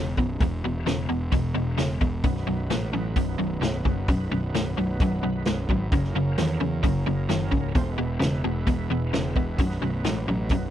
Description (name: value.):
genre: blues rock power trio and southern rock.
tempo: 131 BPM.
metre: 4/4.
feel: straight.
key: B major.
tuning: A4 = 442 Hz.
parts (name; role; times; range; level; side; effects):
overdriven electric guitar; riff; 0.0-10.7 s; B1 to D#3; -27 LUFS; left 1 dB; none.
fuzz picked electric bass; bass; 0.0-10.7 s; B0 to E2; -28 LUFS; equal; overdrive.
vintage drum kit; drums; 0.2-10.6 s; hi-hat, kick drum, snare drum; -26 LUFS; equal; none.
overdriven tonewheel organ; sustained chords; 2.2-10.7 s; F#3 to C5; -36 LUFS; right 5 dB; chorus vibrato, slow rotary speaker.
room: little or no reverb.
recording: none.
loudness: -23 LUFS.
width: side -11 dB against mid.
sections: 0.0-10.7 A section.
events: none.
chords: 0.0 E5; 2.2 B; 5.9 F#; 7.8 E; 9.6 B.